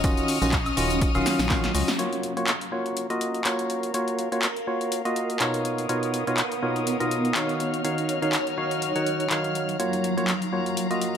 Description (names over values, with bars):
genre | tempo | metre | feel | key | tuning
piano house | 123 BPM | 4/4 | swing 56% on 16ths | unclear | A4 = 440 Hz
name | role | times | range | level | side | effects
clear studio violin section | sustained chords | 0.0-11.2 s | B3 to E#6 | -33 LUFS | left 4 dB | sidechain pumping, low-pass filter
percussive organ stab | riff | 0.0-11.2 s | B2 to F#5 | -26 LUFS | equal | chorus, vintage 12-bit sampler grit, sidechain pumping, ping-pong delay
organ-like FM bass | bass | 0.0-1.8 s | D#1 to C#2 | -29 LUFS | equal | sidechain pumping
electronic kick drum | drums | 0.0-1.6 s | none | -26 LUFS | equal | overdrive
punchy analog drum machine | drums | 0.0-11.1 s | handclaps, hi-hat, shaker, snare drum, woodblock | -29 LUFS | left 1 dB | overdrive
tambourine | percussion | 0.0-2.0 s | none | -39 LUFS | left 7 dB | none
granular cloud pad | texture | 0.0-11.2 s | F#3 to A#5 | -30 LUFS | right 1 dB | built-in reverb, sidechain pumping
room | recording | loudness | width
moderate plate reverb, RT60 1.6 s | none | -23 LUFS | side -8 dB against mid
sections
0.0-2.0 A section; 2.0-11.2 B section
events
drum fill 1.3-2.0; band accent 1.9; filter sweep on violin section 2.0-11.2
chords
0.0 D#m9; 2.0 Bmaj9#11; 7.6 D#m9; 9.8 Bmaj9#11 (rootless)